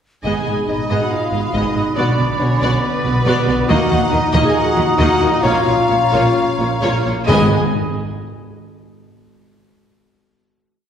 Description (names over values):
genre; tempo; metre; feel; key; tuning
cinematic, heroic adventure film score; 129-141 BPM; 4/4; straight; G# dorian; A4 = 440 Hz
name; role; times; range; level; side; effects
warm symphonic violin section; melody; 0.2-7.5 s; C#5 to D#5; -24 LUFS; left 2 dB; none
mellow clarinet; second line; 0.2-7.5 s; B3 to G#4; -27 LUFS; left 2 dB; none
mellow silver concert flute; second line; 0.2-7.5 s; A#5 to B5; -24 LUFS; right 1 dB; none
mellow French horn section; sustained chords; 0.2-7.5 s; B3 to G#4; -22 LUFS; left 3 dB; none
warm studio cello section; bass; 0.2-7.5 s; G#2 to D#3; -23 LUFS; right 2 dB; none
warm symphonic double bass section; bass; 0.2-7.5 s; G#1 to D#2; -21 LUFS; right 1 dB; none
timpani; percussion; 0.2-0.9, 7.3-7.5 s; G#2; -23 LUFS; equal; none
warm oboe; second line; 0.3-7.5 s; C#5 to D#5; -26 LUFS; equal; none
warm symphonic violin section; second line; 0.3-7.6 s; B4 to G#5; -24 LUFS; equal; none
rich symphonic viola section; accompaniment; 0.3-7.5 s; A#3 to G#4; -24 LUFS; right 1 dB; none
dark trombone section; sustained chords; 0.3-7.5 s; G#2 to D#4; -26 LUFS; right 1 dB; none
room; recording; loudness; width
wet scoring stage reverb, RT60 1.8 s; heard from further back in the room; -14 LUFS; side -8 dB against mid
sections
0.3-7.3 theme; 7.3-9.1 final chord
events
slowing down 2.8-7.3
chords
0.3 G#m; 2.0 Bm; 3.7 D#m; 5.4 A#m; 7.3 G#m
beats
| 0.25 0.69 1.12 1.54 | 1.98 2.41 2.84 3.27 | 3.70 4.12 4.55 4.99 | 5.44 5.90 6.37 6.83 | 7.29